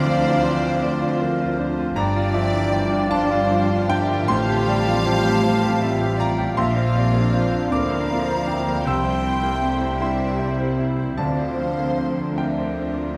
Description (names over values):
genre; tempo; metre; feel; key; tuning
cinematic; 52 BPM (dotted quarters); 6/8; rubato; unclear; A4 = 440 Hz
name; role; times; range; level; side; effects
warm symphonic violin section; melody; 0.0-13.2 s; D4 to C5; -34 LUFS; equal; none
clear studio violin section; second line; 0.0-13.2 s; Bb4 to G5; -33 LUFS; equal; none
flute section; second line; 0.0-13.2 s; E5 to C6; -32 LUFS; equal; none
warm clarinet; second line; 0.0-13.2 s; Bb4 to G5; -32 LUFS; equal; none
bright grand piano; accompaniment; 0.0-13.2 s; A1 to E6; -28 LUFS; equal; none
dark symphonic viola section; accompaniment; 0.0-13.2 s; F3 to F4; -32 LUFS; equal; none
mellow French horn section; sustained chords; 0.0-13.2 s; F3 to G4; -31 LUFS; equal; none
concert harp; arpeggios; 0.0-13.2 s; G2 to C6; -33 LUFS; equal; none
dark symphonic double bass section; bass; 0.0-13.2 s; G1 to D2; -29 LUFS; equal; none
rich symphonic cello section; bass; 0.0-13.2 s; D2 to D3; -30 LUFS; equal; none
timpani; percussion; 0.0-0.8, 11.2-12.3 s; D3; -35 LUFS; equal; none
room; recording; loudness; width
wet scoring stage reverb, RT60 1.5 s; none; -21 LUFS; mono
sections
0.0-13.2 A section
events
none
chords
0.0 Bbadd9/D; 2.0 Gm7; 4.3 Fadd9/A; 6.6 Bbadd9; 8.9 C; 11.2 Dm7